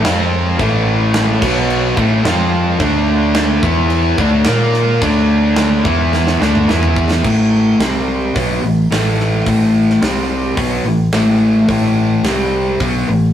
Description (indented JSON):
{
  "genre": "hard rock",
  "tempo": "108 BPM",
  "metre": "4/4",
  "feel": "straight",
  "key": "A minor",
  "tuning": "A4 = 439 Hz",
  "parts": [
    { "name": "cranked stack guitar", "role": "riff", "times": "0.0-13.3 s", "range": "A2 to Bb4", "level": "-21 LUFS", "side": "right 6 dB", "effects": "overdrive" },
    { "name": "crunchy overdriven guitar", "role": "riff", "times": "0.0-13.3 s", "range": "A2 to Bb4", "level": "-15 LUFS", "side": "left 2 dB", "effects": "none" },
    { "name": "high-gain distorted guitar", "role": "riff", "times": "0.0-7.2 s", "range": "A2 to Bb4", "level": "-21 LUFS", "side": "right 1 dB", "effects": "distortion" },
    { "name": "hollow-body short-scale fingered electric bass", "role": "bass", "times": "0.0-13.3 s", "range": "A1 to Bb2", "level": "-20 LUFS", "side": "right 1 dB", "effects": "none" },
    { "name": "tight metal drum kit", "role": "drums", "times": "0.0-12.9 s", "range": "crash cymbal, hi-hat, kick drum, snare drum, toms", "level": "-20 LUFS", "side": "right 1 dB", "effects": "none" }
  ],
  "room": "moderate studio reverb, RT60 0.5 s",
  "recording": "rough rehearsal-room recording",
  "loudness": "-12 LUFS",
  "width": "side -10 dB against mid",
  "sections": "0.0-7.2 A section; 7.2-13.3 B section",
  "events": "drum fill 6.1-7.2",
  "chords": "0.0 F5; 0.6 A5; 1.4 B5; 2.0 A5; 2.3 F5; 2.8 D5; 3.6 E5; 4.2 D5; 4.5 Bb5; 5.0 D5; 5.9 E5; 6.4 D5; 6.7 E5; 7.2 A5; 7.8 C5; 8.4 A5; 10.0 C5; 10.6 A5; 12.3 C5; 12.8 A5",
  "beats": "0.03 | 0.59 1.14 1.70 2.25 | 2.81 3.36 3.91 4.47 | 5.02 5.58 6.13 6.69 | 7.24 7.80 8.35 8.91 | 9.47 10.02 10.58 11.14 | 11.69 12.25 12.81"
}